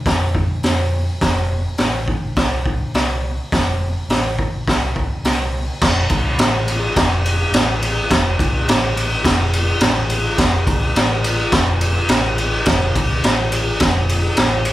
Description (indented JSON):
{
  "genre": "garage rock duo or trio",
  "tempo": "105 BPM",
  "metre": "4/4",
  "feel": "straight",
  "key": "F major",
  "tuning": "A4 = 440 Hz",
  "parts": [
    { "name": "overdriven picked electric bass", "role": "bass", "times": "0.1-14.7 s", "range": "F1 to F2", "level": "-21 LUFS", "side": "equal", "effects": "none" },
    { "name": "raw garage drum kit", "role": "drums", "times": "0.1-14.7 s", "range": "crash cymbal, hi-hat, kick drum, ride cymbal, snare drum", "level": "-16 LUFS", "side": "equal", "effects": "none" }
  ],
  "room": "light reverb",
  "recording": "band playing live in one room, faint mains hum",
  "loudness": "-15 LUFS",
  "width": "side -15 dB against mid",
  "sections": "0.0-5.8 A section; 5.8-14.7 B section",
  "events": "none",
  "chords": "none"
}